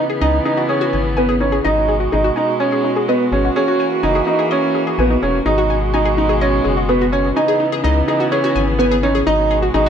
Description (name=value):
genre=piano and strings electronica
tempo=126 BPM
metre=4/4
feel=straight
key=G# minor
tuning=A4 = 440 Hz
part: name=muted string quartet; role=sustained chords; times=0.0-9.9 s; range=B2 to F#4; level=-21 LUFS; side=right 2 dB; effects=none
part: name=analog pluck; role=arpeggios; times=0.0-9.9 s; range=D#4 to G#5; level=-23 LUFS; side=left 5 dB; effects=chorus, tape echo
part: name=clear upright piano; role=riff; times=0.0-9.9 s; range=B3 to D#4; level=-17 LUFS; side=right 2 dB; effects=tape echo
part: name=round analog bass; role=bass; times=0.2-9.9 s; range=E1 to C#2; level=-20 LUFS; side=left 1 dB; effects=none
room=moderate echo chamber reverb, RT60 1.4 s, studio ambience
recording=none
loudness=-14 LUFS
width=side -8 dB against mid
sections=0.0-9.9 A section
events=none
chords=0.0 C#m7; 1.7 G#m7; 3.6 F#7; 5.5 G#m7; 7.4 C#m7; 9.3 G#m7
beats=0.22 0.70 1.18 | 1.65 2.13 2.60 3.08 | 3.56 4.03 4.51 4.98 | 5.46 5.94 6.41 6.89 | 7.37 7.84 8.32 8.79 | 9.27 9.75